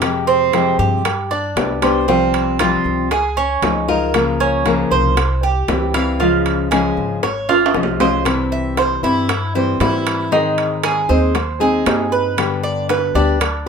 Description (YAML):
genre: latin, Cuban son and guajira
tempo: 116 BPM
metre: 4/4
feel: straight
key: unclear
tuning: A4 = 440 Hz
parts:
  - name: nylon-string guitar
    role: accompaniment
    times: 0.0-13.4 s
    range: C3 to Bb4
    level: -19 LUFS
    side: left 4 dB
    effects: none
  - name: Cuban tres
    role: arpeggios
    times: 0.0-13.7 s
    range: C4 to F5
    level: -18 LUFS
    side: right 5 dB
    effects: none
  - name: upright bass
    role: bass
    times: 0.0-13.7 s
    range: Ab1 to Ab2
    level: -23 LUFS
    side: equal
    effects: none
  - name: bongos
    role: percussion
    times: 0.0-13.7 s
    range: none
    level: -26 LUFS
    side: left 7 dB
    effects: none
  - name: timbales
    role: percussion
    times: 0.0-13.7 s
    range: none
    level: -23 LUFS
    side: right 5 dB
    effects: none
room: moderate small room ambience, RT60 0.5 s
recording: minimal, uncompressed stereo recording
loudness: -14 LUFS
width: side -6 dB against mid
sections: 0.0-8.3 A section; 8.3-13.7 B section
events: drum fill 7.5-8.3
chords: 0.0 Fmadd9; 1.0 G; 2.1 Csus4; 3.1 Dbadd9; 4.1 Bbm/Db; 5.2 C; 6.2 Db; 8.3 C; 10.3 Ab; 12.4 G